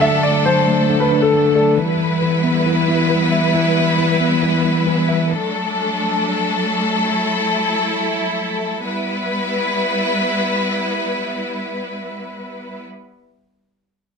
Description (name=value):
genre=hip hop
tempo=136 BPM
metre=4/4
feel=half-time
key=E minor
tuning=A4 = 439 Hz
part: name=dark concert grand piano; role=melody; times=0.0-1.7 s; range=A4 to E5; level=-17 LUFS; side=left 1 dB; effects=low-pass filter, tape echo
part: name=mellow tine electric piano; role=accompaniment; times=0.0-5.3 s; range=D3 to E5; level=-17 LUFS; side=equal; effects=medium stereo tremolo, low-pass filter
part: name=rich studio string section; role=sustained chords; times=0.0-12.8 s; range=F#3 to B4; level=-18 LUFS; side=left 1 dB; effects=none
room=light reverb, small room ambience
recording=none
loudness=-15 LUFS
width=side -6 dB against mid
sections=0.0-8.8 A section; 8.8-12.4 B section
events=none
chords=0.0 D; 1.8 Em; 5.3 D; 8.8 Em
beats=| 0.01 0.45 0.89 1.33 | 1.78 2.22 2.66 3.10 | 3.54 3.98 4.42 4.86 | 5.31 5.75 6.19 6.63 | 7.07 7.51 7.95 8.39 | 8.84 9.28 9.72 10.16 | 10.60 11.04 11.48 11.92